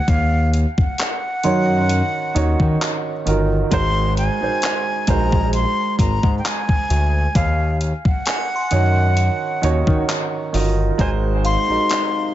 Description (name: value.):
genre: contemporary R&B.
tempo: 66 BPM.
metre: 4/4.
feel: swing 54% on 16ths.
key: Eb dorian.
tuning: A4 = 440 Hz.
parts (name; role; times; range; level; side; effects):
breathy concert flute; melody; 0.0-12.3 s; F5 to C6; -23 LUFS; left 1 dB; dub echo.
warm grand piano; accompaniment; 0.0-12.3 s; Eb3 to Eb5; -22 LUFS; right 5 dB; dub echo.
smooth synth bass; bass; 0.1-11.8 s; G1 to Eb3; -19 LUFS; left 1 dB; none.
clean 12-bit digital drum machine; drums; 0.1-12.1 s; handclaps, hi-hat, kick drum; -21 LUFS; left 1 dB; overdrive, vintage 12-bit sampler grit.
glassy synth bell; texture; 1.4-12.3 s; F5 to C6; -32 LUFS; equal; chorus, dub echo.
dark brass ensemble; sustained chords; 11.0-12.3 s; C3 to Eb4; -27 LUFS; left 3 dB; stereo widening.
room: light reverb, digital ambience.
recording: echo-heavy mix, nothing above 7.7 kHz.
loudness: -16 LUFS.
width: side -13 dB against mid.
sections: 0.0-12.3 A section.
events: none.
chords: 0.1 Ebm7; 3.7 Ab7; 7.4 Ebm7; 11.0 Ab7.